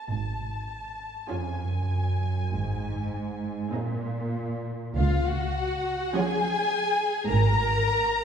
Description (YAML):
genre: classical, slow romantic movement for string orchestra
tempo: 47-54 BPM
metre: 4/4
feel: rubato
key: Db major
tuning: A4 = 442 Hz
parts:
  - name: dark symphonic violin section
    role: melody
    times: 0.0-8.2 s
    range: F5 to Bb5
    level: -30 LUFS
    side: left 3 dB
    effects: none
  - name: rich symphonic cello section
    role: bass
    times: 0.1-8.2 s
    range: Db2 to Bb2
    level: -30 LUFS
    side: right 2 dB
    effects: none
  - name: rich symphonic double bass section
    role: bass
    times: 0.1-8.2 s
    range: Ab1 to Db2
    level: -27 LUFS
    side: right 1 dB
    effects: none
  - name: rich symphonic violin section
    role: second line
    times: 1.3-8.2 s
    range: F4 to Eb5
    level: -30 LUFS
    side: left 1 dB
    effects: none
  - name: rich symphonic viola section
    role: accompaniment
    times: 1.3-7.0 s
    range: F3 to F4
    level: -32 LUFS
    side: right 2 dB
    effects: none
room: wet scoring stage reverb, RT60 1.9 s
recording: heard from further back in the room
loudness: -25 LUFS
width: side -7 dB against mid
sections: 0.0-5.0 A section; 5.0-8.2 A section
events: none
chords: 0.1 Db/Ab; 2.5 Ab; 5.0 Db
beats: | 0.11 1.31 2.51 3.73 | 4.97 6.16 7.28